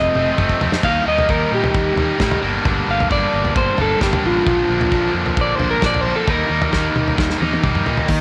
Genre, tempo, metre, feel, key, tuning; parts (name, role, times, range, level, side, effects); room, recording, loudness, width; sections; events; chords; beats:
indie rock; 132 BPM; 4/4; straight; A4 = 439 Hz
electric guitar at the edge of break-up; melody; 0.0-7.2 s; F4 to F5; -22 LUFS; equal
distorted electric guitar; riff; 0.0-8.2 s; F2 to Eb4; -22 LUFS; equal; distortion
fuzz fingered electric bass; bass; 0.0-8.2 s; F1 to Bb2; -26 LUFS; equal; overdrive
loose indie drum kit; drums; 0.2-8.2 s; crash cymbal, hi-hat, kick drum, snare drum, toms; -24 LUFS; equal
light reverb, small room ambience; -18 LUFS; mono
0.0-8.1 A section
drum fill 0.0-0.8, 7.2-8.1; clean electric guitar solo 0.0-8.1
0.0 F; 0.8 Eb; 2.4 Gm; 4.5 Bb; 6.3 Eb
0.38 | 0.83 1.29 1.74 2.19 | 2.65 3.10 3.56 4.01 | 4.46 4.92 5.37 5.82 | 6.28 6.73 7.18 7.64 | 8.09